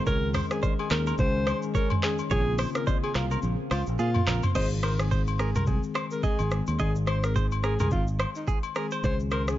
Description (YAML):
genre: afrobeats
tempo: 107 BPM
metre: 4/4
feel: swing 58% on 16ths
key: Ab major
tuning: A4 = 440 Hz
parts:
  - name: deep dark ambient pad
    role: sustained chords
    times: 0.0-4.5 s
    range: Db3 to Ab4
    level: -38 LUFS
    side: right 1 dB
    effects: chorus, built-in reverb
  - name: direct-recorded clean electric guitar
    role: riff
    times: 0.0-9.4 s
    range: Ab4 to Eb5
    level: -36 LUFS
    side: right 7 dB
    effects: tape echo
  - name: breathy alto saxophone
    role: melody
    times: 0.1-9.6 s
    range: Eb4 to C5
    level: -33 LUFS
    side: equal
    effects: tape echo
  - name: marimba with soft mallets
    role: accompaniment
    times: 0.1-9.6 s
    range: Db3 to Ab4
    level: -33 LUFS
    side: left 6 dB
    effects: none
  - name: fingered electric bass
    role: bass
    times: 0.1-9.6 s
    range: Ab1 to Bb2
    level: -27 LUFS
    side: equal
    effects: none
  - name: afro-pop drum kit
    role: drums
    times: 0.1-9.6 s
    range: crash cymbal, handclaps, hi-hat, kick drum, rim click, shaker, toms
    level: -29 LUFS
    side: equal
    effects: overdrive
  - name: agogo bells and woodblock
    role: percussion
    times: 0.3-9.5 s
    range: none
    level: -38 LUFS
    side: left 9 dB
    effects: none
room: little or no reverb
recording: nothing above 7.5 kHz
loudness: -24 LUFS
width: side -14 dB against mid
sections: 0.0-4.6 A section; 4.6-9.6 B section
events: kick muted 3.4-4.6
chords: 0.1 Dbsus2; 2.3 Bbmadd9; 4.6 Ab; 9.0 Dbsus2